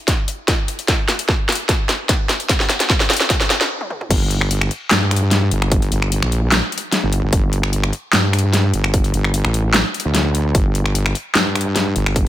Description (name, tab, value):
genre	heavy wobble dubstep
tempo	149 BPM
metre	4/4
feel	half-time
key	G minor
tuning	A4 = 440 Hz
part	dubstep drum kit	drums	0.1-12.2 s	crash cymbal, finger snaps, handclaps, hi-hat, snare drum, toms	-18 LUFS	equal	high-pass filter on hats, high-pass filter on snare, high-pass filter on toms, high-pass filter on cymbals
part	electronic kick drum	drums	0.1-12.2 s	none	-18 LUFS	equal	none
part	wobble bass	bass	4.1-12.3 s	G1 to G2	-17 LUFS	equal	chorus, overdrive
room	light reverb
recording	none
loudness	-15 LUFS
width	side -13 dB against mid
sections	0.0-4.1 A section; 4.1-12.3 B section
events	build-up 0.0-4.1; drum fill 0.0-3.7, 3.8-4.1; stop 3.7-4.1; drop 4.1-12.3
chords	none